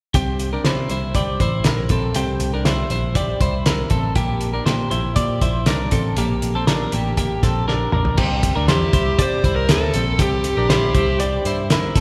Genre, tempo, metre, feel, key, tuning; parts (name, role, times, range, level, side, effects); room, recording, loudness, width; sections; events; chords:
jangly indie pop; 119 BPM; 4/4; straight; C mixolydian; A4 = 442 Hz
twelve-string electric guitar; arpeggios; 0.1-12.0 s; Bb3 to D5; -25 LUFS; equal
vintage muted picked electric bass; bass; 0.1-12.0 s; A1 to C3; -25 LUFS; equal
cloth-damped thuddy drum kit; drums; 0.1-12.0 s; crash cymbal, hi-hat, kick drum, snare drum, toms; -23 LUFS; equal
dark smooth lead guitar; melody; 8.7-11.2 s; G4 to C5; -24 LUFS; equal; overdrive
wet church reverb, RT60 2.9 s; recorded in a church or concert hall; -19 LUFS; mono
0.1-8.2 A section; 8.2-12.0 B section
drum fill 7.7-8.2
0.1 C